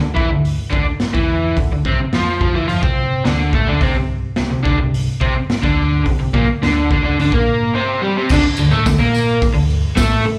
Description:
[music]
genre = garage rock duo or trio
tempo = 107 BPM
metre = 4/4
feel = straight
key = D minor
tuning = A4 = 440 Hz
[part]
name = crunchy overdriven guitar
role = riff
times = 0.0-10.3 s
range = Bb2 to C5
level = -20 LUFS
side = equal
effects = slapback echo
[part]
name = hollow-body short-scale picked electric bass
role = bass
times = 0.0-10.3 s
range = Bb1 to C3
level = -22 LUFS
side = equal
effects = tube saturation
[part]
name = raw garage drum kit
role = drums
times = 0.2-10.1 s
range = crash cymbal, hi-hat, kick drum, snare drum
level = -21 LUFS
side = equal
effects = none
[part]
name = tambourine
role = percussion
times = 8.3-10.1 s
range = none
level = -35 LUFS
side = equal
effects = none
[sound]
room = small room ambience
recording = live gig heard through the venue's PA, club reverb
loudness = -17 LUFS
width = mono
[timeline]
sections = 0.0-8.3 A section; 8.3-10.4 B section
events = break 7.7-8.3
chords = 0.0 Dm; 3.8 C5; 8.3 D5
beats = 0.45 1.01 | 1.57 2.13 2.69 3.25 | 3.81 4.38 4.93 5.50 | 6.06 6.62 7.18 7.74 | 8.30 8.86 9.41 9.97

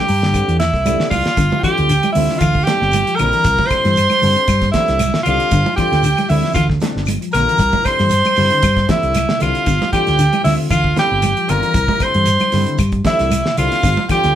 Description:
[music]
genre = afrobeat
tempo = 116 BPM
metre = 4/4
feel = swing 54% on 16ths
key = G dorian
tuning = A4 = 442 Hz
[part]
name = edgy alto saxophone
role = melody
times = 0.0-14.4 s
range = E4 to C5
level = -17 LUFS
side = right 1 dB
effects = none
[part]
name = barky tine electric piano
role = accompaniment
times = 0.0-14.3 s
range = D3 to Bb5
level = -26 LUFS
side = left 5 dB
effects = phaser
[part]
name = fingered electric bass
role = bass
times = 0.1-14.4 s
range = G1 to G2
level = -18 LUFS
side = equal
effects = none
[part]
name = damped 70s drum kit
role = drums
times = 0.1-14.3 s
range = hi-hat, kick drum, snare drum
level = -22 LUFS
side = equal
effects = none
[part]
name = shekere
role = percussion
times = 0.1-14.2 s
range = none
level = -28 LUFS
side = right 3 dB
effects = none
[part]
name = mellow electric guitar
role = arpeggios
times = 0.2-14.2 s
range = C3 to F3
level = -23 LUFS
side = left 3 dB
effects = tremolo
[part]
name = claves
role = percussion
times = 0.3-14.2 s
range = none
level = -29 LUFS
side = left 8 dB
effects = none
[part]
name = congas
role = percussion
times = 0.3-14.1 s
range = none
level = -24 LUFS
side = right 1 dB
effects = none
[part]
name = rich violin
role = second line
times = 0.6-14.4 s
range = E5 to C6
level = -22 LUFS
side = right 2 dB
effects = none
[sound]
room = moderate studio ambience, RT60 0.5 s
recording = band playing live in one room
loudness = -13 LUFS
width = side -10 dB against mid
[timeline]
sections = 0.0-1.4 A section; 1.4-14.4 B section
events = tine electric piano fill 0.0-1.4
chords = 0.0 C; 1.4 Gm7; 3.5 C; 5.5 Gm7; 7.6 C; 9.7 G7sus4; 11.8 C; 13.8 G7(no3)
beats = 0.34 0.86 | 1.38 1.90 2.42 2.93 | 3.45 3.97 4.49 5.00 | 5.52 6.04 6.56 7.08 | 7.60 8.12 8.63 9.15 | 9.67 10.19 10.71 11.23 | 11.75 12.27 12.79 13.31 | 13.83

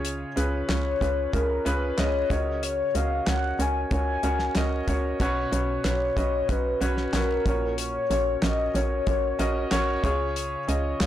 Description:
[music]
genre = piano-driven pop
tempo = 93 BPM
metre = 4/4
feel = straight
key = F# major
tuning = A4 = 440 Hz
[part]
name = warm concert grand piano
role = accompaniment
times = 0.0-11.1 s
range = A#2 to D#5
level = -28 LUFS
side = equal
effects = plate reverb
[part]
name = hollow knocking FM bass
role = bass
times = 0.0-11.1 s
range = A#1 to C#2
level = -28 LUFS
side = right 1 dB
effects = none
[part]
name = damped 70s drum kit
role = drums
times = 0.0-11.1 s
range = handclaps, hi-hat, kick drum, snare drum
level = -30 LUFS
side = equal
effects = none
[part]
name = mellow horn-like synth lead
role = melody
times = 0.7-11.1 s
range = A#4 to G#5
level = -28 LUFS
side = left 3 dB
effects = chorus, plate reverb
[sound]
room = light reverb, small room ambience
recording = blown-out, overdriven recording, overdrive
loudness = -23 LUFS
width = side -12 dB against mid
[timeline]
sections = 0.0-11.1 A section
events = none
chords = 0.0 C#; 2.3 F#/C#; 5.2 Bsus2; 7.5 F#/A#; 10.0 C#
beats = | 0.04 0.69 1.33 1.98 | 2.62 3.27 3.91 4.56 | 5.20 5.85 6.49 7.14 | 7.78 8.43 9.07 9.72 | 10.36 11.01

